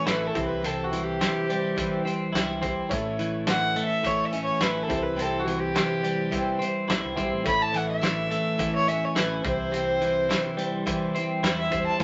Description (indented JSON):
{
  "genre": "folk rock and heartland rock",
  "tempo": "106 BPM",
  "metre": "4/4",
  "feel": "straight",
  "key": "unclear",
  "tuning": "A4 = 440 Hz",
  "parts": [
    { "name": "dark fiddle", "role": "melody", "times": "0.0-12.0 s", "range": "F#4 to B5", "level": "-30 LUFS", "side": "equal", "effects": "none" },
    { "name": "picked twelve-string acoustic guitar", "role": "accompaniment", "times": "0.0-12.0 s", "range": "A2 to C#5", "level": "-35 LUFS", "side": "equal", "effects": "none" },
    { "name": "twelve-string electric guitar", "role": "riff", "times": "0.0-12.0 s", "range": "A2 to E4", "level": "-31 LUFS", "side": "equal", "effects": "none" },
    { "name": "deep dub picked electric bass", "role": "bass", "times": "0.1-12.0 s", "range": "A1 to E2", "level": "-41 LUFS", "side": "equal", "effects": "none" },
    { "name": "loose indie drum kit", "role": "drums", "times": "0.1-12.0 s", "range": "hi-hat, kick drum, snare drum", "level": "-32 LUFS", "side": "equal", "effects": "none" },
    { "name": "warm baby grand piano", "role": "accompaniment", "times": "0.3-12.0 s", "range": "E4 to C6", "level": "-38 LUFS", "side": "equal", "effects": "none" },
    { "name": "tambourine", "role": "percussion", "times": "7.5-12.0 s", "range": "none", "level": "barely audible", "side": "none", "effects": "none" }
  ],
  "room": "moderate studio reverb, RT60 0.6 s",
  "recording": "nothing above 7.8 kHz",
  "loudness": "-26 LUFS",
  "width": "mono",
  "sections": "0.0-12.0 A section",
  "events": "fiddle solo 0.0-12.0; grand piano fill 6.6-7.5",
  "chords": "0.3 C; 2.9 A; 4.9 C; 7.5 A; 9.4 C"
}